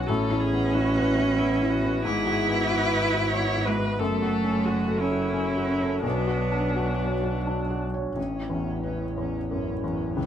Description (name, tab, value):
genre	neoclassical piano and strings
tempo	83-93 BPM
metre	3/4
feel	rubato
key	A major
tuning	A4 = 440 Hz
part	felt-muted upright piano	accompaniment	0.0-10.3 s	A1 to C#5	-29 LUFS	left 3 dB	none
part	rich viola	accompaniment	0.0-7.8 s	D4 to C#5	-31 LUFS	right 1 dB	none
part	warbly tape-like pad	sustained chords	0.0-10.3 s	B3 to E5	-34 LUFS	equal	chorus, built-in reverb
part	rich double bass	bass	0.0-10.3 s	F#1 to C#2	-31 LUFS	equal	none
part	clear cello	second line	0.1-10.3 s	G#3 to E4	-27 LUFS	right 2 dB	none
room	light reverb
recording	none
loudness	-23 LUFS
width	side -9 dB against mid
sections	0.0-8.2 A section; 8.2-10.3 B section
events	none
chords	0.1 Aadd9; 2.0 Eadd9/G#; 4.0 F#m; 6.0 Bmadd9; 8.2 Aadd9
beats	| 0.08 0.74 1.39 | 2.04 2.68 3.34 | 3.99 4.66 5.34 | 6.04 6.76 7.47 | 8.17 8.84 9.51 | 10.17